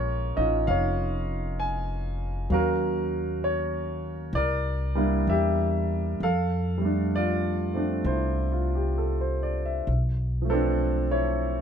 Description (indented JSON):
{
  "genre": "jazz ballad",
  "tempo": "66 BPM",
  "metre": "4/4",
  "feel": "swing 66% on 8ths",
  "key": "F major from 6.2 s",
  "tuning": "A4 = 444 Hz",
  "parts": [
    { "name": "warm concert grand piano", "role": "accompaniment", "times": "0.0-11.6 s", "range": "F3 to Ab5", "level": "-26 LUFS", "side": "right 1 dB", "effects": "none" },
    { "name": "upright bass", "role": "bass", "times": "0.0-11.6 s", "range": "F1 to F2", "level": "-28 LUFS", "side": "equal", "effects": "none" }
  ],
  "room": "little or no reverb",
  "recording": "close, detailed microphones",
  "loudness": "-24 LUFS",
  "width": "side -7 dB against mid",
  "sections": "0.0-6.2 A section; 6.2-11.6 B section",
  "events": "none",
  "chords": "0.0 Bbm7; 2.5 Ebm7; 4.3 C9; 6.2 Fmaj13; 9.9 Bm7b5"
}